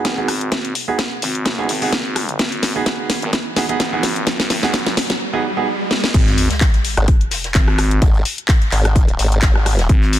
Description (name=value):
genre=bass house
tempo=128 BPM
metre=4/4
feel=swing 55% on 16ths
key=G# minor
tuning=A4 = 439 Hz
part: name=clear baby grand piano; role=stabs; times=0.0-5.7 s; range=B3 to G#4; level=-22 LUFS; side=right 4 dB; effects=sidechain pumping, low-pass filter, digital delay
part: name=growling FM bass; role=bass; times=0.0-10.2 s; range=G#1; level=-21 LUFS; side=equal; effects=tube saturation, sidechain pumping, high-pass filter
part: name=electronic kick drum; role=drums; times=0.0-10.0 s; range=none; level=-15 LUFS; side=equal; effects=high-pass filter on kick, high-pass filter on room
part: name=house drum kit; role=drums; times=0.0-10.2 s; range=crash cymbal, handclaps, hi-hat, rim click, snare drum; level=-20 LUFS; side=left 1 dB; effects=none
part: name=riser and sub drop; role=sound effects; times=1.3-8.0 s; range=none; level=-27 LUFS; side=equal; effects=none
part: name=vintage brush drum kit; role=drums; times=6.1-10.2 s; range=hi-hat, snare drum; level=-32 LUFS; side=left 2 dB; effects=none
part: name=formant-sweep wobble bass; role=bass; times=7.0-9.9 s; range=G#1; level=-16 LUFS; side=equal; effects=chorus, sidechain pumping
room=small room ambience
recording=dense, heavily limited modern master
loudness=-15 LUFS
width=side -13 dB against mid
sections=0.0-6.1 A section; 6.1-10.2 B section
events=build-up 0.0-6.1; drum fill 0.0-5.2, 5.9; filter sweep on grand piano 0.0-6.1; riser 1.3-6.1; drop 6.1-10.2; impact 6.1-8.0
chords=0.0 G#m7; 6.1 N.C.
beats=0.05 | 0.52 0.99 1.46 1.93 | 2.39 2.86 3.33 3.80 | 4.27 4.74 5.21 5.67 | 6.14 6.61 7.08 7.55 | 8.02 8.49 8.96 9.43 | 9.89